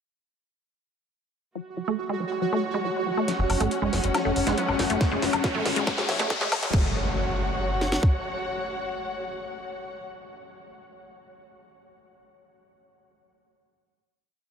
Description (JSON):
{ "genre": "psychedelic trance", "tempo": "139 BPM", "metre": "4/4", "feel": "straight", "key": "F# minor", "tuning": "A4 = 442 Hz", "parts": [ { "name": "pulsing gated texture", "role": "sustained chords", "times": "1.6-6.7 s", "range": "C#4 to F#4", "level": "-31 LUFS", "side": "equal", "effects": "chorus, built-in reverb, sidechain pumping" }, { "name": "wide unison pluck", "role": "riff", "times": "1.6-6.9 s", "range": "F#3 to A3", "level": "-30 LUFS", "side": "moving between left 3 dB and right 3 dB", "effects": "auto-pan, sidechain pumping, ping-pong delay" }, { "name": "muted studio string section", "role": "texture", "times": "1.6-10.0 s", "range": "F#4 to F#5", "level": "-32 LUFS", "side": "left 1 dB", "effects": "sidechain pumping" }, { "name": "techno drum kit", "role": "drums", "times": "3.3-6.8 s", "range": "crash cymbal, hi-hat, snare drum, woodblock", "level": "-30 LUFS", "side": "left 1 dB", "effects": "high-pass filter on snare, high-pass filter on hats, high-pass filter on perc, high-pass filter on cymbals, high-pass filter on room" }, { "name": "riser and impact", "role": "sound effects", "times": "4.3-9.9 s", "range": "none", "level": "-34 LUFS", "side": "left 1 dB", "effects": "none" }, { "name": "tight sequencer bass", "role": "bass", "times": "3.4-8.0 s", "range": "E1 to G#1", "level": "-30 LUFS", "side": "equal", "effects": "none" }, { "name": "resonant blip pluck", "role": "second line", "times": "4.5-6.3 s", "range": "A3 to E4", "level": "-40 LUFS", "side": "left 2 dB", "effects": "none" }, { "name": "garage drum kit", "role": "drums", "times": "5.0-8.1 s", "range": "kick drum, snare drum", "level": "-22 LUFS", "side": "equal", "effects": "none" } ], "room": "wet huge ambient reverb, RT60 8.1 s", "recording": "dreamy mix soaked in reverb, high-pass filter", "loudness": "-23 LUFS", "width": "side -7 dB against mid", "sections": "1.6-3.3 intro; 3.3-6.7 build; 6.7-10.2 final chord", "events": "build-up 3.3-6.7; drum fill 3.3-6.7; filter sweep on synth arpeggio sound 3.3-6.7; filter sweep 3.3-6.7; riser 4.3-6.7", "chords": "1.6 F#5" }